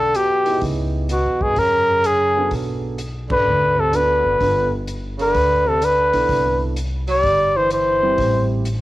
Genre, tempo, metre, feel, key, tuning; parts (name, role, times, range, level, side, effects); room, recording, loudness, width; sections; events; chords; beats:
jazz, small-group swing and bop; 127 BPM; 4/4; swing 66% on 8ths; G major; A4 = 439 Hz
warm trumpet; melody; 0.0-8.5 s; F#4 to D5; -17 LUFS; left 1 dB; cassette tape, plate reverb
bright tenor saxophone; second line; 0.0-8.5 s; B2 to G3; -27 LUFS; right 6 dB; cassette tape, plate reverb
upright bass; bass; 0.0-8.8 s; F#1 to G2; -24 LUFS; equal
swinging big-band drum kit; drums; 0.1-8.8 s; hi-hat, kick drum, ride cymbal; -31 LUFS; equal; cassette tape
dark baby grand piano; accompaniment; 0.5-8.6 s; G3 to A4; -26 LUFS; right 5 dB; cassette tape, plate reverb
moderate small room reverb, RT60 0.5 s; home recording on cassette; -16 LUFS; side -16 dB against mid
0.0-8.8 A section
band accent 3.2
0.0 G; 0.6 C#m7; 1.6 Bm7; 4.4 G7; 6.3 Cmaj7; 8.2 Am7
0.15 | 0.62 1.10 1.57 2.04 | 2.52 2.99 3.46 3.94 | 4.41 4.88 5.35 5.83 | 6.30 6.77 7.25 7.72 | 8.19 8.67